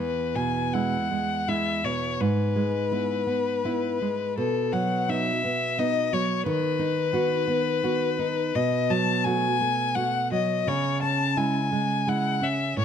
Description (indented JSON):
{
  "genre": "romantic duo for violin and classical guitar",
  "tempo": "85 BPM",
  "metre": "3/4",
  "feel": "uneven beats, rubato",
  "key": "E major",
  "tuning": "A4 = 440 Hz",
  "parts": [
    { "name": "rich violin", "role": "melody", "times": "0.0-12.8 s", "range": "A4 to A5", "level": "-26 LUFS", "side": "left 6 dB", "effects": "none" },
    { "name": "nylon-string guitar", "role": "accompaniment", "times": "0.0-12.8 s", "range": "E2 to F#4", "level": "-26 LUFS", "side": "right 4 dB", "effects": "none" }
  ],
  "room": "light reverb",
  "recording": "close, detailed microphones",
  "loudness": "-23 LUFS",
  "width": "side -8 dB against mid",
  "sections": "0.0-12.8 A section",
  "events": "none",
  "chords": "0.0 E; 2.2 E/G#; 4.4 B; 6.5 B/D#; 8.6 B5; 10.7 C#m"
}